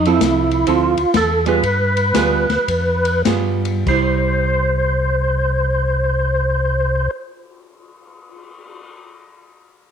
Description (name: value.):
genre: soul jazz organ trio.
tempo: 94-133 BPM.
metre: 4/4.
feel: swing 66% on 8ths.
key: C major.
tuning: A4 = 440 Hz.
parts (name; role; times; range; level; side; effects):
percussive tonewheel organ; melody; 0.0-7.1 s; E4 to C5; -18 LUFS; right 1 dB; slow rotary speaker, overdrive, chorus vibrato.
mellow tonewheel organ; bass; 0.0-7.1 s; C2 to G2; -20 LUFS; left 1 dB; chorus vibrato, slow rotary speaker.
archtop guitar, miked and amplified; accompaniment; 0.1-7.2 s; F3 to A4; -21 LUFS; right 13 dB; none.
open jazz drum kit; drums; 0.1-8.9 s; crash cymbal, cymbal swell, hi-hat, kick drum, ride cymbal, snare drum; -24 LUFS; left 6 dB; none.
room: light reverb.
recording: 1960s-style stereo with parts hard left and right.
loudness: -15 LUFS.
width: side -8 dB against mid.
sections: 0.0-3.9 A section; 3.9-9.0 B section.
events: slowing down 0.0-3.9.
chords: 0.0 Fmaj7; 1.6 G7b9; 3.9 C.